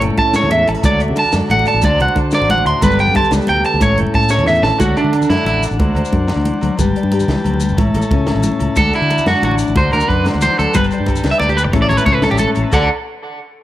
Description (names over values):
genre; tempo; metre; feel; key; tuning
highlife guitar band; 121 BPM (dotted quarters); 12/8; straight; D major; A4 = 440 Hz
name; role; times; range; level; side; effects
nylon-string guitar; accompaniment; 0.0-12.9 s; A2 to E5; -21 LUFS; left 6 dB; cassette tape
overdriven combo organ; sustained chords; 0.0-12.9 s; B3 to C6; -25 LUFS; left 1 dB; cassette tape
fingered electric bass; bass; 0.0-12.9 s; F#1 to D3; -18 LUFS; equal; none
compact cocktail drum kit; drums; 0.0-12.8 s; crash cymbal, hi-hat, kick drum, snare drum; -21 LUFS; equal; none
agogo bells; percussion; 0.0-12.8 s; none; -30 LUFS; right 3 dB; none
congas; percussion; 0.0-12.9 s; none; -22 LUFS; right 1 dB; none
electric guitar at the edge of break-up; arpeggios; 0.2-5.6, 8.8-12.9 s; D4 to C6; -16 LUFS; right 2 dB; cassette tape, analog delay
maracas; percussion; 0.3-12.9 s; none; -32 LUFS; left 7 dB; none
room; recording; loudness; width
light reverb, small room ambience; home recording on cassette; -12 LUFS; side -14 dB against mid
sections
0.0-4.8 A section; 4.8-12.7 B section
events
drum fill 4.1-4.8; clean electric guitar solo 4.8-12.7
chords
0.0 A; 0.8 D; 1.8 D7; 2.8 Gadd9; 3.8 A; 4.8 D; 5.8 D7; 6.8 Gadd9; 7.8 A; 8.8 D; 9.8 D7; 10.7 Gadd9; 11.7 A; 12.7 D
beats
0.35 | 0.84 1.34 1.83 2.33 | 2.82 3.32 3.81 4.31 | 4.80 5.30 5.79 6.29 | 6.79 7.28 7.78 8.27 | 8.77 9.26 9.76 10.25 | 10.75 11.24 11.74 12.23 | 12.73